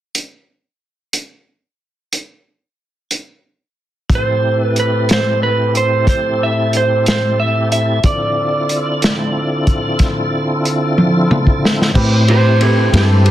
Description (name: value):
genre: slow blues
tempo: 61 BPM (dotted quarters)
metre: 12/8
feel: straight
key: A minor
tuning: A4 = 439 Hz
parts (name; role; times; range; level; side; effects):
- vintage drum kit; drums; 0.1-13.3 s; crash cymbal, hi-hat, kick drum, ride cymbal, snare drum, toms; -16 LUFS; equal; soft clipping on kick
- tonewheel organ; sustained chords; 4.1-13.3 s; A2 to C5; -18 LUFS; left 1 dB; slow rotary speaker, overdrive, chorus vibrato, plate reverb
- electric slide guitar; melody; 4.2-13.3 s; E4 to E5; -17 LUFS; right 3 dB; plate reverb
- clear grand piano; accompaniment; 11.9-13.3 s; C4 to B4; -20 LUFS; right 2 dB; plate reverb
- vintage muted fingered electric bass; bass; 12.0-13.3 s; G2 to A2; -11 LUFS; equal; none
room: moderate studio reverb, RT60 0.7 s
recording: dense, heavily limited modern master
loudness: -13 LUFS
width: side -12 dB against mid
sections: 0.1-4.1 A section; 4.1-12.0 B section; 12.0-13.3 C section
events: drum fill 11.0-12.0; electric slide guitar solo 12.0-13.3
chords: 0.1 N.C.; 4.1 Am7; 8.0 Dm7; 12.0 Am7